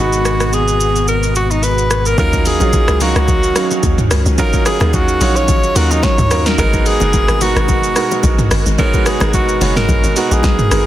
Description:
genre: amapiano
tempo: 109 BPM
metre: 4/4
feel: swing 55% on 16ths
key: Eb minor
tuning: A4 = 440 Hz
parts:
  - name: breathy alto saxophone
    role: melody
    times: 0.0-10.9 s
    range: Eb4 to Db5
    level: -18 LUFS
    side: equal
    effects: tape echo
  - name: clear baby grand piano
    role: accompaniment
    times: 0.0-10.9 s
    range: Gb3 to F5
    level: -20 LUFS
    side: right 5 dB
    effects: none
  - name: string machine, violas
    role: sustained chords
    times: 0.0-10.9 s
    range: Cb3 to F5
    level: -25 LUFS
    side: left 1 dB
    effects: ensemble chorus, sidechain pumping
  - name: fingered electric bass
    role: bass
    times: 0.0-2.1 s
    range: Ab1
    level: -17 LUFS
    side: equal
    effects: none
  - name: deep house drum kit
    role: drums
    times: 0.1-10.9 s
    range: hi-hat, kick drum, rim click, shaker, snare drum, toms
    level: -16 LUFS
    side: equal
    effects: overdrive, vintage 12-bit sampler grit
  - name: hollow log drum bass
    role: bass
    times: 2.2-10.9 s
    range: Gb1 to Eb2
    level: -16 LUFS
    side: equal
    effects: none
  - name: congas and bongos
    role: percussion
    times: 2.2-10.9 s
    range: none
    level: -26 LUFS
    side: left 6 dB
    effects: none
room: light reverb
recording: dense, heavily limited modern master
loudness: -11 LUFS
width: side -13 dB against mid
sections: 0.0-2.2 A section; 2.2-10.9 B section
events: drop 2.2-10.9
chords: 0.0 Abm9; 2.2 Ebm9; 6.6 Abm9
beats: 0.53 1.08 1.63 | 2.18 2.73 3.28 3.83 | 4.38 4.93 5.48 6.03 | 6.58 7.13 7.68 8.24 | 8.79 9.34 9.89 10.44

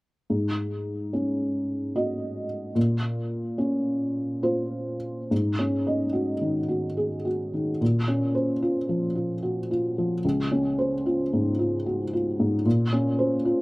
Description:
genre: classical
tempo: 74 BPM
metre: 3/4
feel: rubato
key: unclear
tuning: A4 = 440 Hz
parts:
  - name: felt-muted upright piano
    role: accompaniment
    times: 0.3-13.6 s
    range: Db2 to Eb5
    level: -23 LUFS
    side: equal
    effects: none
room: light reverb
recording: recorded outdoors, with no room sound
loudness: -24 LUFS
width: side -22 dB against mid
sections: 0.3-5.3 A section; 5.3-13.6 B section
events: none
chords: 0.3 Ab7sus4; 2.8 Bbmadd9; 5.3 Ab7sus4; 7.8 Bbmadd9; 10.2 Dbmaj7; 12.7 Bbmadd9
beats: | 0.31 1.14 1.95 | 2.76 3.58 4.44 | 5.31 6.15 6.98 | 7.81 8.61 9.42 | 10.23 11.05 11.86 | 12.65 13.44

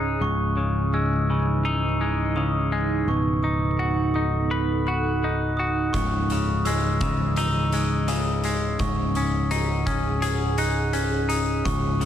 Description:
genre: post-rock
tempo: 84 BPM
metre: 4/4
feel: straight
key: C# minor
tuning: A4 = 440 Hz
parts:
  - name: deep dark ambient pad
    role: sustained chords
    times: 0.0-12.1 s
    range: E3 to F#5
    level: -30 LUFS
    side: right 3 dB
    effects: chorus, built-in reverb
  - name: glockenspiel with soft plastic mallets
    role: arpeggios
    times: 0.0-12.1 s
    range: C#6 to F#6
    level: -29 LUFS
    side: right 1 dB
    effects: digital delay
  - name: semi-hollow electric guitar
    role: arpeggios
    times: 0.0-12.1 s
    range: C#2 to B4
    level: -27 LUFS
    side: left 4 dB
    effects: digital delay
  - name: picked electric bass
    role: bass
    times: 0.0-12.1 s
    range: C#1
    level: -25 LUFS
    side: equal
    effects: none
  - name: oversized low-tuned drum kit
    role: drums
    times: 5.9-12.1 s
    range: hi-hat, kick drum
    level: -31 LUFS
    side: equal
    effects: none
room: light reverb, studio ambience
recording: none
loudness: -21 LUFS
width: side -10 dB against mid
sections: 0.0-12.1 A section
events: none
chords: 0.2 C#madd9; 3.1 B7/C#; 5.9 C#madd9; 8.8 G#7sus4/C#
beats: | 0.21 0.93 1.65 2.36 | 3.08 3.79 4.51 5.23 | 5.94 6.66 7.37 8.09 | 8.80 9.52 10.23 10.94 | 11.66

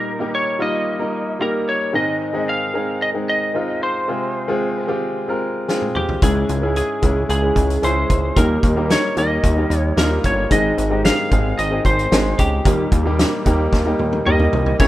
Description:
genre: piano-driven pop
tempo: 112 BPM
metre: 4/4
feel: straight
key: unclear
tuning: A4 = 439 Hz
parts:
  - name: lightly driven lead guitar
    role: melody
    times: 0.0-14.9 s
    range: G4 to F5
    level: -22 LUFS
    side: equal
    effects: none
  - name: clear concert grand piano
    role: accompaniment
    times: 0.0-14.9 s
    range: Ab2 to Bb4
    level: -21 LUFS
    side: equal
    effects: none
  - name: loose indie drum kit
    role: drums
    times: 5.7-14.9 s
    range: crash cymbal, hi-hat, kick drum, snare drum, toms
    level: -19 LUFS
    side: equal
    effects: none
  - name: chorused synth bass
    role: bass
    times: 6.2-14.9 s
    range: G1 to Eb2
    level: -20 LUFS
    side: equal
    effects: none
  - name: warm studio string section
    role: sustained chords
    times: 14.8-14.9 s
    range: Db3 to Fb4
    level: -28 LUFS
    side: left 2 dB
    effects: none
room: small room ambience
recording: rough home demo mix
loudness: -16 LUFS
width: side -15 dB against mid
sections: 0.0-14.8 A section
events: drum fill 5.7-6.2, 13.7-14.8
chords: 0.0 Eb; 1.9 Ab; 4.1 Fm; 6.2 Dbm; 8.4 Eb; 10.5 Ab; 12.7 Eb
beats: 0.33 0.87 1.41 | 1.94 2.48 3.01 3.55 | 4.08 4.62 5.15 5.69 | 6.22 6.76 7.29 7.83 | 8.37 8.90 9.44 9.97 | 10.51 11.04 11.58 12.12 | 12.65 13.19 13.72 14.26 | 14.80

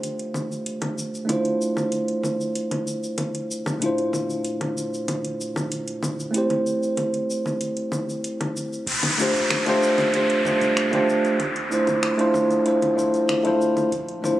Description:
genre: sunset chillout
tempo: 95 BPM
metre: 4/4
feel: straight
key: unclear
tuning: A4 = 440 Hz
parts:
  - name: tine electric piano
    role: accompaniment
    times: 0.0-14.4 s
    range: Bb2 to C5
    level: -22 LUFS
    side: equal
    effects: auto-pan, vintage 12-bit sampler grit, digital delay
  - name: smooth R&B drum kit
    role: drums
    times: 0.0-14.4 s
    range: congas, finger snaps, hi-hat, shaker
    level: -29 LUFS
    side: equal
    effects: none
  - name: warm sub bass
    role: bass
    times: 8.9-14.4 s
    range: F1 to D2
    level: -38 LUFS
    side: equal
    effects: none
  - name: electronic kick drum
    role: drums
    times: 8.9-14.1 s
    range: none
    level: -42 LUFS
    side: equal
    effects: none
  - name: downlifter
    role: sound effects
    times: 8.9-13.9 s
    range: none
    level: -26 LUFS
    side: equal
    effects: none
room: moderate lush hall reverb, RT60 2.3 s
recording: recorded on a phone in the room, club reverb, compression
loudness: -21 LUFS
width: side -14 dB against mid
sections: 0.0-8.9 A section; 8.9-14.4 B section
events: none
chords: 0.0 F6; 1.3 Dm9; 3.8 Bbmaj9#11; 6.3 Am7; 8.9 F6; 11.4 Dm9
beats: 0.03 0.66 | 1.29 1.93 2.56 3.19 | 3.82 4.45 5.08 5.72 | 6.35 6.98 7.61 8.24 | 8.87 9.51 10.14 10.77 | 11.40 12.03 12.66 13.29 | 13.93

